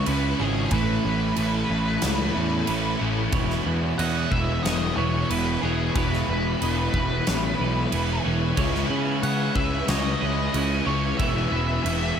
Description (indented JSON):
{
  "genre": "rock, shoegaze and dream pop",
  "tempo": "92 BPM",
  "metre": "4/4",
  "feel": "straight",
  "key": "E major",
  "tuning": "A4 = 441 Hz",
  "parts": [
    { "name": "octave-fuzz lead guitar", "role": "melody", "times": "0.0-12.2 s", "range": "G#4 to F#5", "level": "-30 LUFS", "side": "equal", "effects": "distortion, tape echo" },
    { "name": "string machine, violins", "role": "sustained chords", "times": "0.0-12.2 s", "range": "E4 to D#6", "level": "-35 LUFS", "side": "left 1 dB", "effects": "ensemble chorus" },
    { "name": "crunchy overdriven guitar", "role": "riff", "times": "0.0-12.2 s", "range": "A2 to E4", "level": "-31 LUFS", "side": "right 10 dB", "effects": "reverse reverb" },
    { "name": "overdriven semi-hollow guitar", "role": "riff", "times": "0.0-12.2 s", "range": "E2 to C#4", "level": "-31 LUFS", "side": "equal", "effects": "none" },
    { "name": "thick fuzz guitar", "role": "riff", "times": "0.0-12.2 s", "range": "E2 to C#4", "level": "-30 LUFS", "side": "left 11 dB", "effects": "distortion, ensemble chorus" },
    { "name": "fuzz picked electric bass", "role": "bass", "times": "0.1-12.2 s", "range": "E1 to C#3", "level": "-26 LUFS", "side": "equal", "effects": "overdrive" },
    { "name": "huge arena drum kit", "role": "drums", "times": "0.1-12.0 s", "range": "crash cymbal, kick drum, snare drum", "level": "-29 LUFS", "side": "equal", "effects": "none" },
    { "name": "twelve-string electric guitar", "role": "arpeggios", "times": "3.3-12.2 s", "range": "B4 to E5", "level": "-35 LUFS", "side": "right 9 dB", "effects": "lush chorus, tape echo" }
  ],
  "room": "light reverb, small room ambience",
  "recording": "none",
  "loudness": "-21 LUFS",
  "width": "side -8 dB against mid",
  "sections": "0.0-12.2 A section",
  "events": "none",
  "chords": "0.0 C#m7; 0.7 Amaj7; 3.3 Emaj7; 8.6 C#m7; 11.2 Emaj7"
}